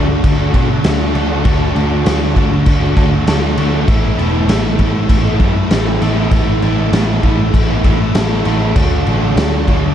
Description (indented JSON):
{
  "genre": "rock, shoegaze and dream pop",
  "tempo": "99 BPM",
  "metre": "4/4",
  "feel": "straight",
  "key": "unclear",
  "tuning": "A4 = 440 Hz",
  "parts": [
    { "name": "cranked stack guitar", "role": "riff", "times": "0.0-9.9 s", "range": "D3 to A4", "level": "-20 LUFS", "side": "equal", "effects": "overdrive" },
    { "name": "overdriven semi-hollow guitar", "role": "riff", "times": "0.0-9.9 s", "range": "D3 to A4", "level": "-21 LUFS", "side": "left 11 dB", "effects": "analog chorus" },
    { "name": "overdriven semi-hollow guitar", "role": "riff", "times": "0.0-9.9 s", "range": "A2 to F#4", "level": "-20 LUFS", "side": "right 11 dB", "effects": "reverse reverb" },
    { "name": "vintage muted picked electric bass", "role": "bass", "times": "0.0-9.9 s", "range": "E1 to B2", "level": "-17 LUFS", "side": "equal", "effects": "none" },
    { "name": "raw garage drum kit", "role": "drums", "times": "0.2-9.8 s", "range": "crash cymbal, kick drum, snare drum", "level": "-16 LUFS", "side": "equal", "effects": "none" }
  ],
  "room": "small room ambience",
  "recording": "dark, warm production",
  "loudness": "-11 LUFS",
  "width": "side -10 dB against mid",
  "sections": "0.0-9.9 A section",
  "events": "none",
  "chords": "0.0 D; 3.9 Asus2; 8.8 D"
}